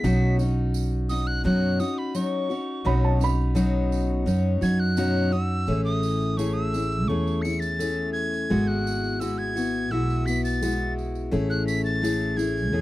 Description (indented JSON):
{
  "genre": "acoustic folk duo or small band",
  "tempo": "85 BPM",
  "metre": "4/4",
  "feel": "straight",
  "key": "unclear",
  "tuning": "A4 = 440 Hz",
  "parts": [
    { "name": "breathy bright tin whistle", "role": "melody", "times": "0.0-12.8 s", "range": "B5 to C#7", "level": "-30 LUFS", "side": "right 1 dB", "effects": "none" },
    { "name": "picked steel-string acoustic guitar", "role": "accompaniment", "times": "0.0-12.8 s", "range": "B2 to G#4", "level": "-26 LUFS", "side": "left 2 dB", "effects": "none" },
    { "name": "upright bass", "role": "bass", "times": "0.0-12.8 s", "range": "G#1 to F#2", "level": "-25 LUFS", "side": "right 1 dB", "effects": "none" },
    { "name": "tambourine", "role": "percussion", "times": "0.0-12.7 s", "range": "none", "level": "-44 LUFS", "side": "right 19 dB", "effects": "none" },
    { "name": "felt-muted upright piano", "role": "second line", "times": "2.9-4.6 s", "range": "A5 to B5", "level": "-31 LUFS", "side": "right 7 dB", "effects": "none" }
  ],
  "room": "little or no reverb",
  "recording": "dry, close 1970s-style studio recording",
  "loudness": "-22 LUFS",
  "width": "side -16 dB against mid",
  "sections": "0.0-2.9 A section; 2.9-5.7 B section; 5.7-12.8 C section",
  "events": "tin whistle solo 0.0-2.9",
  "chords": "0.0 Badd9; 5.7 Amaj7; 8.5 Eadd9/G#; 11.3 Amaj7",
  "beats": "| 0.04 0.74 1.45 2.16 | 2.86 3.57 4.28 4.98 | 5.69 6.39 7.10 7.80 | 8.51 9.21 9.91 10.62 | 11.32 12.03 12.73"
}